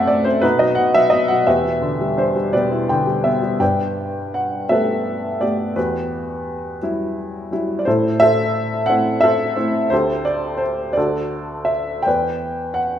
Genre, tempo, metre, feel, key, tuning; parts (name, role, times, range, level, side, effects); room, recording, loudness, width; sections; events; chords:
classical, lyrical solo piano; 57 BPM (dotted quarters); 6/8; rubato; E minor, G major from 3.6 s; A4 = 440 Hz
warm upright piano; solo; 0.0-13.0 s; D2 to G5; -16 LUFS; equal
wet recital hall reverb, RT60 1.6 s; recorded in a church or concert hall; -16 LUFS; side -10 dB against mid
0.0-3.6 A section; 3.6-13.0 B section
upright piano fill 2.5-3.6
0.4 B; 1.5 Em7; 3.6 Gadd9; 5.8 Emadd9; 7.9 Am; 9.9 Dsus4; 11.0 D; 12.1 Em7